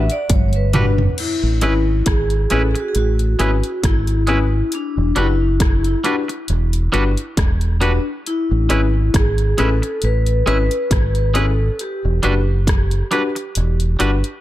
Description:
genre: lovers rock reggae.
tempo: 68 BPM.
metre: 4/4.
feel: swing 55% on 16ths.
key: A major.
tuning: A4 = 438 Hz.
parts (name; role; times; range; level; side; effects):
vibraphone with medium hard mallets; melody; 0.0-14.4 s; D4 to E5; -23 LUFS; left 1 dB; tape echo.
deep dub fingered electric bass; bass; 0.0-14.2 s; E1 to A1; -17 LUFS; equal; none.
house drum kit; drums; 0.1-14.4 s; crash cymbal, hi-hat, kick drum, rim click, toms; -20 LUFS; equal; gated reverb.
dark baby grand piano; accompaniment; 0.7-14.1 s; C#4 to B4; -24 LUFS; left 4 dB; none.
twangy electric guitar; stabs; 0.7-14.1 s; G3 to B4; -23 LUFS; right 2 dB; none.
room: digital ambience.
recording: none.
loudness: -15 LUFS.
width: side -14 dB against mid.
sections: 0.0-1.2 A section; 1.2-14.4 B section.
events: vibraphone solo 0.0-1.2; drum fill 0.3-1.2.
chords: 0.0 Em9 (rootless); 1.2 Amaj9; 4.7 Em9; 8.3 Amaj9; 11.8 Em9.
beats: 0.30 | 1.18 2.07 2.95 3.83 | 4.72 5.60 6.49 7.37 | 8.25 9.14 10.02 10.90 | 11.79 12.67 13.55.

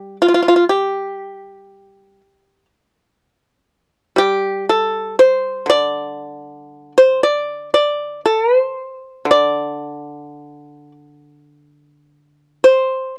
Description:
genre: chinese traditional, Chinese solo plucked strings.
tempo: 51-62 BPM.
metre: 4/4.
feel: rubato.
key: unclear.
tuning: A4 = 440 Hz.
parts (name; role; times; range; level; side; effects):
pipa; solo; 0.0-13.1 s; D3 to D5; -16 LUFS; equal; none.
room: light reverb.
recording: dry, close 1970s-style studio recording.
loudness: -16 LUFS.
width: mono.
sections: 0.0-12.6 A section.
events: none.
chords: none.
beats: | 0.21 1.23 2.22 3.19 | 4.17 5.17 6.18 7.20 | 8.22 9.28 10.38 11.52 | 12.65.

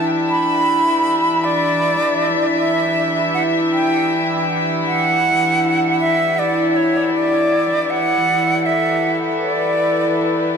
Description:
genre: ambient.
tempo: 79 BPM.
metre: 4/4.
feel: swing 58% on 16ths.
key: unclear.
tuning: A4 = 440 Hz.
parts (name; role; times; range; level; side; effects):
bright silver concert flute; melody; 0.0-10.5 s; C#5 to B5; -17 LUFS; right 1 dB; dub echo.
dark studio string section; sustained chords; 0.0-10.6 s; E3 to E5; -18 LUFS; left 1 dB; none.
room: wet echo chamber reverb, RT60 1.5 s.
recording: vinyl crackle.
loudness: -15 LUFS.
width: side -6 dB against mid.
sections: 0.0-10.6 A section.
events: none.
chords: 0.0 Gadd9/E.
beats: 0.30 1.06 | 1.82 2.58 3.34 4.10 | 4.86 5.62 6.38 7.14 | 7.90 8.66 9.42 10.18.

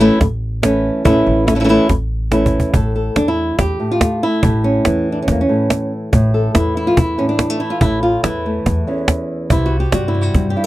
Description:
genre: flamenco.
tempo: 142 BPM.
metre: 4/4.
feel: straight.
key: unclear.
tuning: A4 = 440 Hz.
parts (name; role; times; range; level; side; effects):
flamenco guitar; melody; 0.0-10.7 s; E2 to A4; -15 LUFS; equal; none.
upright bass; bass; 0.0-10.5 s; A1 to G2; -20 LUFS; equal; none.
cajon; percussion; 0.2-10.6 s; none; -16 LUFS; right 1 dB; none.
room: light reverb.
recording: dry, close 1970s-style studio recording.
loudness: -14 LUFS.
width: side -16 dB against mid.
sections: 0.0-2.7 A section; 2.7-10.7 B section.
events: drum fill 2.3-2.7.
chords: 0.0 A; 9.5 C.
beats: 0.21 0.63 | 1.05 1.48 1.90 2.32 | 2.74 3.17 3.59 4.01 | 4.43 4.86 5.28 5.70 | 6.13 6.55 6.97 7.39 | 7.82 8.24 8.66 9.08 | 9.50 9.92 10.34.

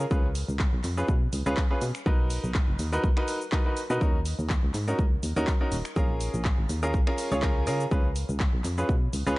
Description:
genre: piano house.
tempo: 123 BPM.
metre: 4/4.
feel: swing 55% on 16ths.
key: unclear.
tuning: A4 = 440 Hz.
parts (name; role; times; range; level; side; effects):
solid FM bass; bass; 0.0-9.4 s; Eb1 to Db3; -30 LUFS; equal; sidechain pumping.
house drum kit; drums; 0.0-9.4 s; cabasa, finger snaps, handclaps, hi-hat; -37 LUFS; equal; overdrive.
clear grand piano; riff; 0.1-9.4 s; Db4 to Db5; -30 LUFS; equal; sidechain pumping, digital delay.
electronic kick drum; drums; 0.1-9.0 s; none; -25 LUFS; equal; overdrive.
room: little or no reverb.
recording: dark, warm production, nothing above 10.8 kHz.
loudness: -24 LUFS.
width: side -20 dB against mid.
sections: 0.0-9.4 A section.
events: none.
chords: 0.0 Db7; 1.8 Bmaj7; 4.0 Ebm7; 6.0 Bbm7; 7.7 Db7.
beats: | 0.11 0.60 1.08 1.57 | 2.06 2.55 3.04 3.52 | 4.01 4.50 4.99 5.47 | 5.96 6.45 6.94 7.43 | 7.91 8.40 8.89 9.38.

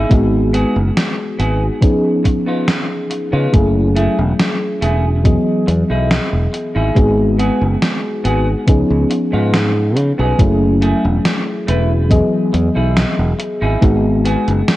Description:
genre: vaporwave.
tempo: 70 BPM.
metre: 4/4.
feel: straight.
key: F# dorian.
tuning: A4 = 445 Hz.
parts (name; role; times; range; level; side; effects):
mellow FM electric piano; accompaniment; 0.0-14.8 s; E3 to D#5; -17 LUFS; left 1 dB; wide subtle chorus, tape echo.
semi-hollow electric guitar; riff; 0.0-14.5 s; A3 to B4; -23 LUFS; equal; wide subtle chorus, vintage 12-bit sampler grit, tape echo.
fingered electric bass; bass; 0.0-14.6 s; E1 to C#3; -16 LUFS; equal; none.
electronic kick drum; drums; 0.1-14.0 s; none; -13 LUFS; equal; none.
gated 80s digital drum machine; drums; 0.1-14.8 s; hi-hat, snare drum; -19 LUFS; equal; gated reverb, gated reverb snare.
room: light reverb.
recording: cassette tape.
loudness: -13 LUFS.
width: side -16 dB against mid.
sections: 0.0-14.8 A section.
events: none.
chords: 0.1 G#m7; 1.8 C#9; 3.5 F#m9; 5.3 Emaj7; 7.0 G#m7; 8.7 C#9; 10.4 F#m9; 12.1 Emaj7; 13.8 G#m7.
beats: | 0.11 0.97 1.82 2.68 | 3.54 4.40 5.25 6.11 | 6.97 7.82 8.68 9.54 | 10.40 11.25 12.11 12.97 | 13.82 14.68.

